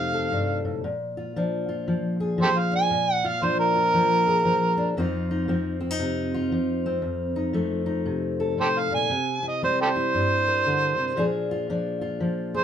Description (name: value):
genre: acoustic country blues, solo or duo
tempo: 116 BPM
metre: 4/4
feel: swing 63% on 8ths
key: F mixolydian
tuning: A4 = 440 Hz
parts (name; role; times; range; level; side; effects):
- overdriven harmonica; melody; 0.0-5.1, 8.6-12.6 s; G4 to Ab5; -22 LUFS; right 2 dB; none
- fingerpicked steel-string acoustic guitar; accompaniment; 0.0-12.6 s; F2 to Bb4; -25 LUFS; left 2 dB; none
room: moderate studio reverb, RT60 0.6 s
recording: minimal, uncompressed stereo recording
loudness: -22 LUFS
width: side -9 dB against mid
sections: 0.0-12.6 A section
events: none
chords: 0.0 F7; 0.8 Bb7; 5.0 F7; 9.1 C7; 11.2 Bb7